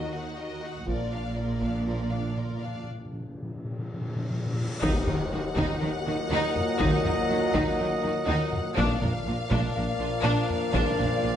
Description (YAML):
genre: cinematic, epic orchestral film score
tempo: 122 BPM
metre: 4/4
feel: straight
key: Eb harmonic minor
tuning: A4 = 438 Hz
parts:
  - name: warm symphonic violin section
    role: melody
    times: 0.0-11.4 s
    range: D5 to Gb5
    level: -36 LUFS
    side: left 6 dB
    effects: none
  - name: clear symphonic violin section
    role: second line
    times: 0.0-11.3 s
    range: D4 to D5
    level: -37 LUFS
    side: left 3 dB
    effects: none
  - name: rich symphonic viola section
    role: accompaniment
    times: 0.0-11.3 s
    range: D4 to Gb4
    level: -35 LUFS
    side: equal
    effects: none
  - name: clear trombone section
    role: sustained chords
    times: 0.0-11.4 s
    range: Bb2 to Gb3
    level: -34 LUFS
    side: right 4 dB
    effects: none
  - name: dark French horn section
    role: sustained chords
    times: 0.0-11.4 s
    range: Bb3 to Bb4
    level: -34 LUFS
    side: left 9 dB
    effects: none
  - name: clear symphonic double bass section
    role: bass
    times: 0.0-11.3 s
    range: Bb1 to Eb2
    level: -32 LUFS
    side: right 2 dB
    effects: none
  - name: warm symphonic cello section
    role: bass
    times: 0.0-11.3 s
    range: Bb2 to Eb3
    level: -32 LUFS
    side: right 2 dB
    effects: none
  - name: taiko ensemble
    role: drums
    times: 0.9-1.8, 4.8-11.2 s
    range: none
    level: -31 LUFS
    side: equal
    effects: none
  - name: cymbal swell and tam-tam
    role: percussion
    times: 0.9-6.8 s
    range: none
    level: -39 LUFS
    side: left 2 dB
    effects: none
  - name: timpani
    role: percussion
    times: 0.9-4.8 s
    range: Bb2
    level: -34 LUFS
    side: left 1 dB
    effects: none
  - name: cymbal swell and impact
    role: sound effects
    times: 3.7-6.8 s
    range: none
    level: -40 LUFS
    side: equal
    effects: none
  - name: dark trumpet section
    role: stabs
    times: 4.8-11.4 s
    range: D5 to Eb5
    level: -33 LUFS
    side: right 3 dB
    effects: none
room: wet recital hall reverb, RT60 1.5 s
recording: nothing above 10.7 kHz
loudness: -25 LUFS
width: side -10 dB against mid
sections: 0.0-4.8 A section; 4.8-11.4 B section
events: timpani fill 0.9-4.8; break 2.9-4.8; cymbal swell 3.7-4.8; band accent 4.8-5.3; impact 4.8-6.8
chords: 0.0 Ebm; 0.9 Bb; 4.8 Ebm; 8.8 Bb